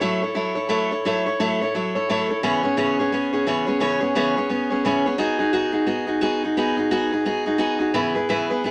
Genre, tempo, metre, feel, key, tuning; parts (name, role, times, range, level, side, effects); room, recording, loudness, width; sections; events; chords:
rock; 174 BPM; 4/4; swing 60% on 8ths; E major; A4 = 440 Hz
picked steel-string acoustic guitar; solo; 0.0-8.7 s; C#3 to C#5; -22 LUFS; equal
moderate studio reverb, RT60 0.7 s; -22 LUFS; mono
0.0-8.7 A section
0.0 A6; 2.4 E6; 5.2 B6; 7.9 E6